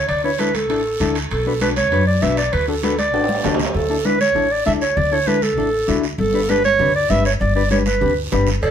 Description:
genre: latin, cumbia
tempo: 197 BPM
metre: 4/4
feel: straight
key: D major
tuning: A4 = 440 Hz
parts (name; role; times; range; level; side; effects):
- warm clarinet; melody; 0.0-8.7 s; A4 to E5; -18 LUFS; right 2 dB; none
- upright bass; bass; 0.0-8.7 s; G1 to F#2; -22 LUFS; equal; none
- guiro; percussion; 0.1-8.7 s; none; -31 LUFS; right 5 dB; none
- timbales and cowbell; percussion; 0.1-3.7, 8.6-8.7 s; none; -26 LUFS; right 3 dB; none
- mellow electric guitar; accompaniment; 0.2-8.5 s; D4 to B4; -23 LUFS; left 6 dB; none
- congas; percussion; 0.4-8.5 s; none; -26 LUFS; equal; none
room: moderate studio reverb, RT60 0.7 s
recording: band playing live in one room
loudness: -16 LUFS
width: side -8 dB against mid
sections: 0.0-3.8 A section; 3.8-8.7 A section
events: drum fill 3.1-3.8, 7.7-8.6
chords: 0.0 Dsus2; 1.3 Bm; 2.5 D; 3.8 Dsus2; 6.2 G

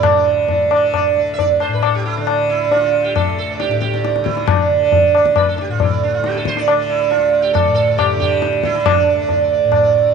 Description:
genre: indian classical, Hindustani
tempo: 136 BPM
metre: 5/4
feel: straight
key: D raga bhimpalasi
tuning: A4 = 440 Hz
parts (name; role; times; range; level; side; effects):
- sitar; melody; 0.0-10.1 s; D4 to E5; -15 LUFS; right 8 dB; none
- tanpura; drone; 0.0-10.1 s; D2 to D3; -23 LUFS; left 3 dB; none
- tabla; percussion; 0.0-9.9 s; none; -19 LUFS; left 9 dB; none
room: wet echo chamber reverb, RT60 1.8 s, small room reverb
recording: 1960s-style stereo with parts hard left and right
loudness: -13 LUFS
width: side -6 dB against mid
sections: 0.0-10.1 A section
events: speeding up 0.0-10.1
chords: none

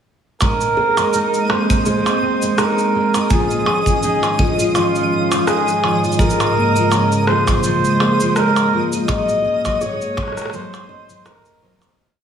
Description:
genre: folktronica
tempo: 83 BPM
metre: 4/4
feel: swing 56% on 16ths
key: Ab mixolydian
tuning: A4 = 440 Hz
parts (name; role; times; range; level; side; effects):
- warm flugelhorn; melody; 0.4-11.8 s; F4 to Eb5; -19 LUFS; right 1 dB; tape echo
- warbly tape-like pad; sustained chords; 0.9-12.0 s; Ab2 to Db4; -22 LUFS; right 1 dB; chorus, built-in reverb, phaser
- fingerpicked steel-string acoustic guitar; arpeggios; 0.4-12.0 s; F3 to Bb4; -22 LUFS; equal; wide subtle chorus, low-pass filter, tape echo
- electronic percussion blips, shaker and rim click; drums; 0.4-11.9 s; none; -23 LUFS; right 2 dB; none
- kick drum; drums; 0.4-10.3 s; none; -21 LUFS; equal; none
- twinkling granular texture; texture; 1.1-12.0 s; Eb5 to Eb6; -28 LUFS; right 1 dB; built-in reverb, analog chorus
- kalimba; second line; 0.8-12.0 s; Ab4 to Eb5; -27 LUFS; left 2 dB; analog delay
room: wet lush hall reverb, RT60 1.6 s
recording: dreamy mix soaked in reverb, small room ambience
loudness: -14 LUFS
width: side -8 dB against mid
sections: 0.4-12.0 groove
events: fade-out 8.1-12.0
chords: 0.4 Abadd9; 3.3 Dbadd9/Ab; 6.2 Bbm7/Ab; 9.1 Gb/Ab

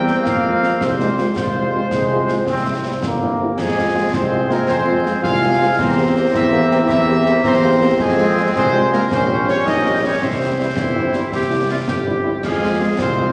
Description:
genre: military-style march for wind band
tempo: 108 BPM (dotted quarters)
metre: 6/8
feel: straight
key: F minor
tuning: A4 = 440 Hz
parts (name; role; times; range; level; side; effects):
- dark trumpet section; melody; 0.0-13.3 s; Ab4 to G5; -25 LUFS; equal; none
- clear woodwind section; second line; 0.0-13.3 s; C4 to Bb5; -27 LUFS; equal; none
- warm euphonium; second line; 0.0-13.3 s; G3 to F4; -24 LUFS; equal; none
- dark trombone section; sustained chords; 0.0-13.3 s; E3 to F4; -26 LUFS; equal; none
- mellow tuba; bass; 0.0-13.3 s; G1 to F2; -24 LUFS; equal; none
- warm French horn section; accompaniment; 0.1-13.2 s; G3 to G4; -26 LUFS; equal; none
- concert snare drum, concert bass drum and clash cymbals; drums; 0.1-13.2 s; none; -28 LUFS; equal; none
room: wet scoring stage reverb, RT60 1.5 s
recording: vinyl crackle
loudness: -17 LUFS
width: mono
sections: 0.0-3.6 A section; 3.6-13.3 B section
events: none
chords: 0.3 Fm; 1.4 Fm/C; 2.5 C; 3.6 Fm; 5.8 C7/E; 8.0 Fm; 9.1 Gdim/Bb; 10.2 C; 12.4 Fm

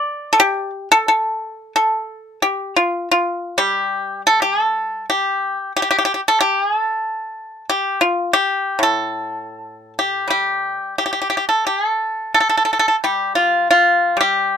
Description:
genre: chinese traditional, Chinese solo plucked strings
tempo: 90 BPM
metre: 4/4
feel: uneven beats, rubato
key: unclear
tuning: A4 = 440 Hz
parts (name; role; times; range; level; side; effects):
- pipa; solo; 0.0-14.6 s; A2 to D5; -16 LUFS; equal; none
room: little or no reverb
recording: close, detailed microphones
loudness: -16 LUFS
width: side -8 dB against mid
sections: 0.0-1.1 A section; 1.1-14.6 B section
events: none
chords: none

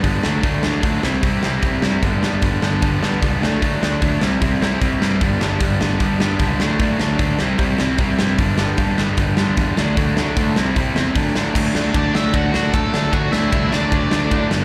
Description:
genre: punk rock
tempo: 151 BPM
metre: 4/4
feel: straight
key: unclear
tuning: A4 = 439 Hz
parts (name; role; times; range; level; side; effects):
- crunchy overdriven guitar; riff; 0.0-14.6 s; G2 to E4; -25 LUFS; equal; none
- overdriven electric guitar; riff; 0.0-14.6 s; G2 to D4; -25 LUFS; equal; slapback echo
- fuzz picked electric bass; bass; 0.0-14.6 s; G1 to A2; -24 LUFS; equal; overdrive
- big rock drum kit; drums; 0.0-14.6 s; crash cymbal, hi-hat, kick drum, ride cymbal, snare drum; -23 LUFS; equal; none
- nasal lead guitar with a parked wah; melody; 12.0-14.5 s; D4 to A5; -25 LUFS; equal; overdrive, slapback echo
room: little or no reverb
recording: live gig heard through the venue's PA, club reverb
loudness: -18 LUFS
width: mono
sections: 0.0-11.6 A section; 11.6-14.6 B section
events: none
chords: 0.2 D; 1.0 C; 2.0 G; 3.4 D; 4.2 C; 5.2 G; 6.6 D; 7.4 C; 8.4 G; 9.8 D; 10.6 C; 11.2 D

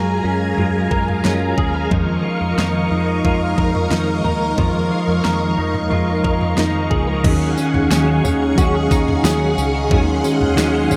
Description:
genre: dream pop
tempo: 90 BPM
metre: 4/4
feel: straight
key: Eb minor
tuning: A4 = 441 Hz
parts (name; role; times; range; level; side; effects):
- clean electric guitar; accompaniment; 0.0-11.0 s; F2 to Bb4; -24 LUFS; equal; tremolo, ensemble chorus
- string machine, full ensemble; sustained chords; 0.0-11.0 s; Ab4 to Db6; -25 LUFS; equal; ensemble chorus
- clean electric guitar; arpeggios; 0.0-11.0 s; Eb3 to Bb4; -23 LUFS; equal; ensemble chorus, delay
- vintage muted fingered electric bass; bass; 0.0-11.0 s; Db2 to Gb2; -25 LUFS; equal; none
- pop drum kit; drums; 0.6-11.0 s; crash cymbal, kick drum, snare drum, tambourine, toms; -23 LUFS; equal; overdrive
room: moderate plate reverb, RT60 2.2 s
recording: none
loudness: -18 LUFS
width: mono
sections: 0.0-7.2 A section; 7.2-11.0 B section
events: none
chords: 0.0 Gbmaj9; 1.9 Db69; 7.2 Ebm11

